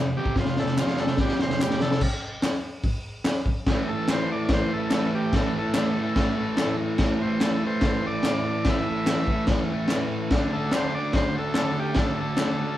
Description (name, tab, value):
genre	garage rock duo or trio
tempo	145 BPM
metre	4/4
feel	straight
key	A minor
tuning	A4 = 440 Hz
part	fuzz guitar	riff	0.0-12.8 s	F2 to D4	-26 LUFS	equal	distortion
part	combo organ	melody	0.2-12.8 s	F4 to E5	-31 LUFS	right 1 dB	none
part	crunchy breakbeat drum kit	drums	0.3-12.5 s	crash cymbal, hi-hat, kick drum, snare drum	-25 LUFS	left 1 dB	none
part	group handclap	percussion	0.8-12.5 s	none	-39 LUFS	right 1 dB	none
room	light reverb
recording	band playing live in one room, cassette tape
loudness	-22 LUFS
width	side -13 dB against mid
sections	0.0-2.0 A section; 2.0-3.7 B section; 3.7-12.8 C section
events	transistor combo organ solo 0.0-2.0; drum fill 0.4-2.0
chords	0.0 F5; 2.0 N.C.; 3.7 A5; 10.3 D5